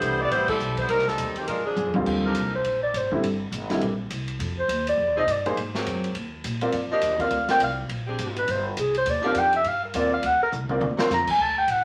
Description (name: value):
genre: jazz, big band swing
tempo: 206 BPM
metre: 4/4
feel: swing 60% on 8ths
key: Eb major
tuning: A4 = 440 Hz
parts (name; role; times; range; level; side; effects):
- warm saxophone section; melody; 0.0-1.9 s; Eb3 to D5; -26 LUFS; equal; none
- warm concert grand piano; accompaniment; 0.0-11.1 s; Eb2 to D5; -29 LUFS; equal; none
- upright bass; bass; 0.0-11.8 s; G1 to Bb2; -35 LUFS; equal; none
- swinging big-band drum kit; drums; 0.0-11.8 s; crash cymbal, hi-hat, kick drum, ride cymbal, snare drum, toms; -36 LUFS; equal; none
- dark clarinet; melody; 2.3-11.8 s; F4 to A#5; -25 LUFS; equal; none
- dark saxophone section; sustained chords; 2.3-11.1 s; E3 to A#4; -34 LUFS; equal; none
room: wet club reverb, RT60 0.7 s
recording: vinyl crackle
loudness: -25 LUFS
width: mono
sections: 0.0-2.1 A section; 2.1-11.4 B section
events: band accent 0.5; drum fill 1.8, 10.5-11.1; clarinet solo 2.1-11.8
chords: 0.0 Am9; 0.9 Cm7; 1.5 Bb13; 2.1 Ebmaj9; 3.2 C7b13; 4.4 Fm7; 5.6 Ab9; 6.7 Gm7; 7.9 Bb13; 9.1 Ebmaj9; 10.2 Dm7b13